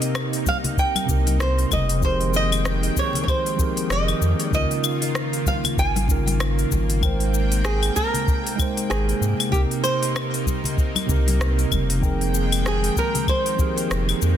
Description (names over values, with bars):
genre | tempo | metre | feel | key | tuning
sunset chillout | 96 BPM | 4/4 | swing 57% on 16ths | F minor | A4 = 440 Hz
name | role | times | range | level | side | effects
flamenco guitar | melody | 0.0-14.4 s | G4 to Ab5 | -26 LUFS | right 2 dB | digital delay
mellow tine electric piano | accompaniment | 0.0-14.4 s | C3 to G5 | -27 LUFS | right 1 dB | auto-pan, digital delay
lush unison pad | sustained chords | 0.0-14.4 s | C3 to G5 | -29 LUFS | equal | chorus
deep house drum kit | drums | 0.0-14.4 s | cabasa, claves, hi-hat, rim click | -27 LUFS | left 4 dB | studio reverb
electronic kick drum | drums | 0.5-13.7 s | none | -23 LUFS | equal | studio reverb
congas | percussion | 0.5-13.3 s | none | -31 LUFS | left 3 dB | none
round analog bass | bass | 1.1-14.3 s | F1 to Ab2 | -22 LUFS | equal | none
room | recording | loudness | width
light reverb, digital ambience | dense, heavily limited modern master | -19 LUFS | side -10 dB against mid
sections
0.0-14.4 A section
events
none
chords
0.0 Cm7; 2.0 Fm11; 4.5 Db69; 7.0 Abmaj9; 9.5 Cm7; 12.0 Fm11